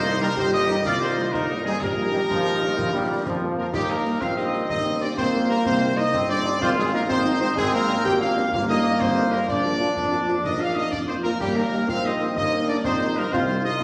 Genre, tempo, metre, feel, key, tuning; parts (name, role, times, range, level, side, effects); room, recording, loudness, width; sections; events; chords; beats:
military-style march for wind band; 125 BPM (dotted quarters); 6/8; straight; Eb major; A4 = 439 Hz
bright trumpet section; melody; 0.0-13.8 s; G4 to G5; -28 LUFS; equal
large flute ensemble; second line; 0.0-3.6 s; C4 to G4; -34 LUFS; equal
mellow euphonium; second line; 0.0-13.8 s; G3 to G4; -29 LUFS; equal
mellow French horn section; accompaniment; 0.0-13.7 s; D3 to G4; -35 LUFS; equal
warm tuba; bass; 0.0-13.8 s; G1 to F2; -31 LUFS; equal
warm trombone section; sustained chords; 0.2-13.8 s; Eb3 to F4; -29 LUFS; equal
concert snare drum, concert bass drum and clash cymbals; drums; 0.2-13.8 s; -38 LUFS; equal
wet scoring stage reverb, RT60 1.7 s; vinyl crackle; -23 LUFS; mono
0.0-3.7 A section; 3.7-13.8 B section
0.0 Cm7; 1.8 Eb/Bb; 2.8 Bb; 3.7 Eb; 5.7 Cm; 6.6 Fm7/Ab; 7.6 Bb7/Ab; 8.5 Eb/G; 9.5 Bb; 11.4 Eb; 13.3 Cm
0.37 | 0.85 1.33 | 1.81 2.29 | 2.77 3.25 | 3.73 4.21 | 4.69 5.17 | 5.65 6.13 | 6.61 7.09 | 7.57 8.05 | 8.53 9.01 | 9.49 9.97 | 10.45 10.93 | 11.41 11.89 | 12.37 12.85 | 13.32 13.80